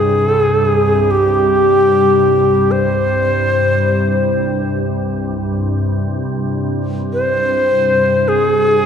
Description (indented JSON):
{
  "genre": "world meditative, free-time meditation music",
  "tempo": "free time",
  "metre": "none",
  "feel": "none",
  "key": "unclear",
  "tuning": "A4 = 440 Hz",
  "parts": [
    { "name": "bright Native American-style cedar flute", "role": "melody", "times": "0.0-8.9 s", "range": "G4 to C5", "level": "-13 LUFS", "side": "equal", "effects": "tape echo" },
    { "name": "soft additive organ-like pad", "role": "drone", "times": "0.0-8.9 s", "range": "C2 to G2", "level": "-17 LUFS", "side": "left 1 dB", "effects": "ensemble chorus, built-in reverb" },
    { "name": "tubular bells", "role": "texture", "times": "0.0-1.9 s", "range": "none", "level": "barely audible", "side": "none", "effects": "none" }
  ],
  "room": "wet concert hall reverb, RT60 2.1 s",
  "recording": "dark, warm production",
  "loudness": "-12 LUFS",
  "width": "side -7 dB against mid",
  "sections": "0.0-8.9 A section",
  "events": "none",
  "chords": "none",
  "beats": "free time"
}